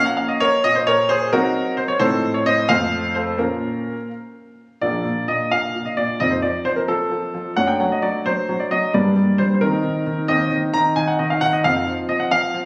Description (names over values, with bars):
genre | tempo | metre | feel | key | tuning
classical-period piano sonatina | 88 BPM (dotted quarters) | 6/8 | straight | Bb minor, Bb major from 4.8 s | A4 = 440 Hz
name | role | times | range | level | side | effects
clear grand piano | solo | 0.0-12.7 s | Bb1 to Bb5 | -20 LUFS | equal | none
room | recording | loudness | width
moderate recital hall reverb, RT60 1.7 s | recorded on a phone in the room, club reverb | -20 LUFS | mono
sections
0.0-4.8 A section; 4.8-12.7 B section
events
none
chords
0.0 Bbm; 0.6 Cm7b5/Bb; 2.0 F7/A; 2.7 F; 3.4 Bbm; 4.8 Bb; 6.2 F7; 7.6 D/F#; 8.9 Gm; 9.6 Cm7/Eb; 11.6 F5